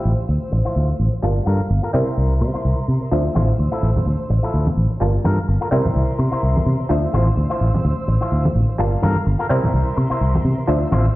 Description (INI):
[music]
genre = filtered disco house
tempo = 127 BPM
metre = 4/4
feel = swing 56% on 16ths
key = D minor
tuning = A4 = 440 Hz
[part]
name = muted clav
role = accompaniment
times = 0.0-11.2 s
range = F3 to A5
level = -24 LUFS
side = equal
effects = phaser, low-pass filter
[part]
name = clear studio violin section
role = sustained chords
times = 0.0-11.2 s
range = Bb4 to E6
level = -31 LUFS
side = right 1 dB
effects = low-pass filter
[part]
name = electric guitar with an envelope filter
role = riff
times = 0.0-11.1 s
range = E4 to C5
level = -26 LUFS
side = left 2 dB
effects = low-pass filter
[part]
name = fingered electric bass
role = bass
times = 0.1-11.1 s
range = G1 to C3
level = -18 LUFS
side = equal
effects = low-pass filter
[part]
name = tambourine and congas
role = percussion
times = 3.1-11.1 s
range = none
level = -23 LUFS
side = equal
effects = low-pass filter on perc
[sound]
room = light reverb, studio reverb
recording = played on a big sound system in a bare room, stone room reverb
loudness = -16 LUFS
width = side -17 dB against mid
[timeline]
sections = 0.0-11.2 A section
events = filter sweep 0.0-11.2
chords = 0.0 Dm9; 1.2 Gm9; 1.9 C7; 3.1 Dm9; 5.0 Gm9; 5.7 C7; 6.9 Dm9; 8.8 Gm9; 9.5 C7